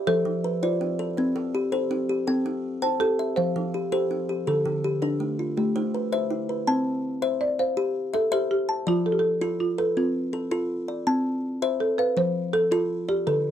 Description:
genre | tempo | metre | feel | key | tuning
southern african traditional, mbira-style interlocking cycle | 109 BPM (dotted quarters) | 12/8 | straight | C major | A4 = 440 Hz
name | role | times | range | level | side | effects
folk marimba with soft mallets | melody | 0.0-13.5 s | F4 to D5 | -24 LUFS | right 1 dB | none
kalimba | arpeggios | 0.0-13.5 s | D3 to A5 | -26 LUFS | left 3 dB | none
kalimba | arpeggios | 0.0-7.0 s | D3 to A5 | -30 LUFS | right 6 dB | none
room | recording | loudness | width
light reverb | dry, close 1970s-style studio recording | -23 LUFS | side -10 dB against mid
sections
0.0-6.7 A section; 6.7-13.5 B section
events
none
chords
0.1 F; 2.3 C; 3.4 F; 4.5 Dm; 5.6 Am; 6.7 C; 8.9 F; 11.1 C; 12.2 F

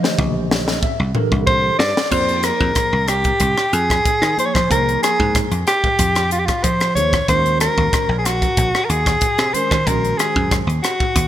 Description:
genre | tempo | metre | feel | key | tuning
electric jazz fusion | 93 BPM | 4/4 | straight | F phrygian | A4 = 442 Hz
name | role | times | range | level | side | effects
tine electric piano | accompaniment | 0.0-10.7 s | D3 to E5 | -25 LUFS | equal | medium stereo tremolo, analog chorus
crisp fusion drum kit | drums | 0.0-11.3 s | crash cymbal, hi-hat, kick drum, rim click, snare drum, toms | -20 LUFS | equal | none
dry thumbed slap bass | bass | 0.2-11.3 s | Bb1 to F3 | -21 LUFS | equal | none
warm soprano saxophone | melody | 1.5-11.3 s | F4 to D5 | -18 LUFS | equal | none
room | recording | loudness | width
moderate lush hall reverb, RT60 2.9 s | bright 1980s-style digital production | -15 LUFS | side -12 dB against mid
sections
0.0-2.1 A section; 2.1-11.3 B section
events
drum fill 0.0-2.1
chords
0.0 C7; 2.1 Fm11; 7.3 Ebm11

